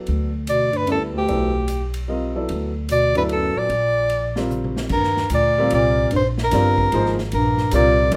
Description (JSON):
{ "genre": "modal jazz", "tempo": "149 BPM", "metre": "3/4", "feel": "swing 65% on 8ths", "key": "G major, Eb major from 4.9 s", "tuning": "A4 = 440 Hz", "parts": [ { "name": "clear grand piano", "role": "accompaniment", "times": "0.0-8.2 s", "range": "F3 to Eb5", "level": "-27 LUFS", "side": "equal", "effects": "none" }, { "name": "upright bass", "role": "bass", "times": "0.1-8.2 s", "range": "G1 to Eb2", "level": "-26 LUFS", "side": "equal", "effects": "none" }, { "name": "swinging big-band drum kit", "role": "drums", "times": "0.1-8.2 s", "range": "crash cymbal, hi-hat, kick drum, ride cymbal, snare drum, toms", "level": "-35 LUFS", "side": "equal", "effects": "none" }, { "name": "clear soprano saxophone", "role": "melody", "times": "0.5-8.1 s", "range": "G4 to D5", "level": "-22 LUFS", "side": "equal", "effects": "none" }, { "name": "breathy bass clarinet", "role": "second line", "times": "0.5-8.2 s", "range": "D2 to B2", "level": "-27 LUFS", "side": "equal", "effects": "none" } ], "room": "moderate large studio reverb, RT60 1.1 s", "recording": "none", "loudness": "-20 LUFS", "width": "mono", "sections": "0.0-4.9 A section; 4.9-8.2 B section", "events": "drum fill 4.5-4.9", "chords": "0.0 Gmaj9; 3.7 Bbadd9; 4.9 Ebmaj9" }